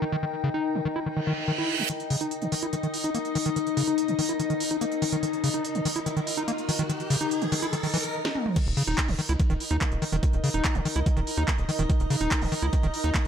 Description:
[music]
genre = psychedelic trance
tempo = 144 BPM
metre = 4/4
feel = straight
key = Eb major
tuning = A4 = 440 Hz
[part]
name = evolving wavetable pad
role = sustained chords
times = 0.0-13.3 s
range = Eb4 to G5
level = -32 LUFS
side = left 7 dB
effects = chorus, built-in reverb, sidechain pumping
[part]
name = overdriven acid bass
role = riff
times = 0.0-13.2 s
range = Db3 to Fb4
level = -28 LUFS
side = equal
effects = auto-pan, cassette tape, sidechain pumping, digital delay
[part]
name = warbly tape-like pad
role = texture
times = 0.0-13.3 s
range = Eb4 to Bb5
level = -36 LUFS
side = right 2 dB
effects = chorus, built-in reverb, sidechain pumping
[part]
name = reverse cymbal, riser and swell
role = sound effects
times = 1.2-8.6 s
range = none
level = -34 LUFS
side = right 2 dB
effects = none
[part]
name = techno drum kit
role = drums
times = 1.9-13.3 s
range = crash cymbal, handclaps, hi-hat, snare drum, toms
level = -31 LUFS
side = right 2 dB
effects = none
[part]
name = electronic kick drum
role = drums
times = 8.6-13.2 s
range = none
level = -25 LUFS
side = right 1 dB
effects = overdrive
[part]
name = tight sequencer bass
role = bass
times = 8.7-13.3 s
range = Eb1 to Eb2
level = -28 LUFS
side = equal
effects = tube saturation
[sound]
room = moderate plate reverb, RT60 1.5 s, digital ambience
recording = none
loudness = -24 LUFS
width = side -8 dB against mid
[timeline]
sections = 0.0-1.9 A section; 1.9-8.6 B section; 8.6-13.3 C section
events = filter sweep on acid bass 0.0-1.9, 1.9-8.6; reverse cymbal 1.2-1.9; build-up 1.9-8.6; riser 1.9-8.1; swell 7.7-8.6; drum fill 8.2-8.6; drop 8.6-13.3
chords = 0.0 Eb5

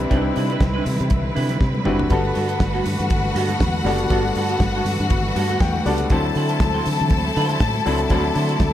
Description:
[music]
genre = disco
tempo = 120 BPM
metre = 4/4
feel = swing 56% on 16ths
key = G major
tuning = A4 = 440 Hz
[part]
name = clear concert grand piano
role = accompaniment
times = 0.0-8.7 s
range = F#3 to G5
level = -26 LUFS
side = left 4 dB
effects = none
[part]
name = semi-hollow electric guitar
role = accompaniment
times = 0.0-8.6 s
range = B3 to C5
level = -28 LUFS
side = right 6 dB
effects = wide subtle chorus
[part]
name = clear studio string section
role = sustained chords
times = 0.0-8.7 s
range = D3 to B4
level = -26 LUFS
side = equal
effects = none
[part]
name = fingered electric bass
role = bass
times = 0.0-8.7 s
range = F#1 to D3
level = -23 LUFS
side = equal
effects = none
[part]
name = congas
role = percussion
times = 0.0-8.7 s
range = none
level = -31 LUFS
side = left 3 dB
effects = none
[part]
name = damped 70s drum kit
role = drums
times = 0.1-8.7 s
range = hi-hat, kick drum, snare drum, toms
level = -23 LUFS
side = equal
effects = none
[part]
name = clear studio string section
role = second line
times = 2.1-8.7 s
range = F#4 to A5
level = -25 LUFS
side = left 4 dB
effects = none
[sound]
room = light reverb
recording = none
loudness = -18 LUFS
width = side -12 dB against mid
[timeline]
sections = 0.0-8.7 A section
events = drum fill 1.6-2.1; grand piano fill 5.4-6.1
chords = 0.0 Cmaj9; 2.1 Gmaj9; 6.1 D9

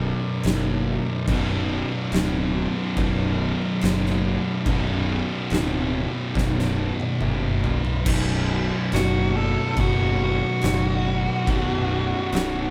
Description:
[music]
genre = stoner and doom metal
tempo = 71 BPM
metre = 4/4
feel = straight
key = unclear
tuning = A4 = 440 Hz
[part]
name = thick fuzz guitar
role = riff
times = 0.0-12.7 s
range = B1 to B2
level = -30 LUFS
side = equal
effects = distortion
[part]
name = thick fuzz guitar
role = riff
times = 0.0-12.7 s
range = B1 to B2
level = -30 LUFS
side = equal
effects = distortion
[part]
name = fuzz fingered electric bass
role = bass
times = 0.0-12.7 s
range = B0 to F#1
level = -28 LUFS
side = equal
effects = overdrive
[part]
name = oversized low-tuned drum kit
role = drums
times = 0.4-12.5 s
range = crash cymbal, kick drum, snare drum, toms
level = -30 LUFS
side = equal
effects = none
[part]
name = octave-fuzz lead guitar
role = melody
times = 8.9-12.7 s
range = F#4 to A4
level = -28 LUFS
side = equal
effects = distortion
[sound]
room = light reverb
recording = band playing live in one room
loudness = -23 LUFS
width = mono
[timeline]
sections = 0.0-8.1 A section; 8.1-12.7 B section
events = drum fill 6.4-8.1; lead electric guitar solo 8.1-12.7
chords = 0.0 Bm; 8.1 B5

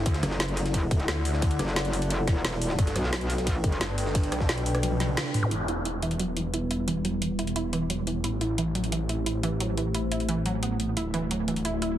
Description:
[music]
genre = dark technical drum and bass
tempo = 176 BPM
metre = 4/4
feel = straight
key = E minor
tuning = A4 = 440 Hz
[part]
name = dark analog pad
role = sustained chords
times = 0.0-12.0 s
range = G3 to G5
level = -32 LUFS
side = left 1 dB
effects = chorus, sidechain pumping
[part]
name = snarling distorted saw bass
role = bass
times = 0.0-12.0 s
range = D1 to D2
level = -30 LUFS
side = equal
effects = distortion, tube saturation
[part]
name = drum and bass drum kit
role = drums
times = 0.1-11.9 s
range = hi-hat, rim click, snare drum, toms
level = -31 LUFS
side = equal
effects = none
[part]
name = electronic kick drum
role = drums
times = 0.1-4.5 s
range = none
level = -25 LUFS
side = equal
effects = none
[part]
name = jungle sampler-style drum kit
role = drums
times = 0.1-5.4 s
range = hi-hat, ride cymbal, snare drum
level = -38 LUFS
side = right 1 dB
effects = high-pass filter on cymbals, high-pass filter on snare, high-pass filter on hats, high-pass filter on room
[part]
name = metallic wobble bass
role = bass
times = 0.2-3.8 s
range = E1 to B1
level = -28 LUFS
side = equal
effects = distortion, chorus
[part]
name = zap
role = sound effects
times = 5.4-5.5 s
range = none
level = -34 LUFS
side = equal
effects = none
[part]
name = analog pluck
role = arpeggios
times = 5.5-11.9 s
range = E3 to E4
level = -30 LUFS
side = right 2 dB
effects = chorus, sidechain pumping, digital delay
[sound]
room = light reverb, digital ambience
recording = heavily compressed radio sound, multiband compression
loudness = -25 LUFS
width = side -12 dB against mid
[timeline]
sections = 0.0-5.5 A section; 5.5-12.0 B section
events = drop 0.0-5.5; kick drops out 4.8-5.5; drum fill 4.8-5.5; band accent 5.2; filter sweep on synth arpeggio sound 5.5-12.0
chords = 0.1 Dadd9; 2.8 Gadd9; 5.5 Em; 8.2 Am7; 11.0 Dadd9

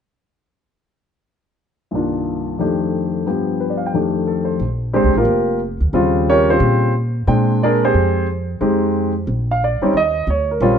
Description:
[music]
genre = jazz piano trio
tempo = 179 BPM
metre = 4/4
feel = swing 63% on 8ths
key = Bb mixolydian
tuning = A4 = 444 Hz
[part]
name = warm grand piano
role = melody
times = 1.9-10.8 s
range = C2 to G5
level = -16 LUFS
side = equal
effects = none
[part]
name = upright bass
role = bass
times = 4.6-10.8 s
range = F1 to Bb2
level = -19 LUFS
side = equal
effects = none
[sound]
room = moderate echo chamber reverb, RT60 1.3 s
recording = nothing above 10.5 kHz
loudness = -15 LUFS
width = side -7 dB against mid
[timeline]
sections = 1.9-4.6 A section; 4.6-10.8 B section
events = none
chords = 1.9 Cm11; 2.6 F13; 3.3 G7; 3.9 F13; 4.6 Bb7sus2; 5.9 Eb13; 7.3 Bb13; 8.6 Fm7; 9.3 Bb; 9.9 Eb7

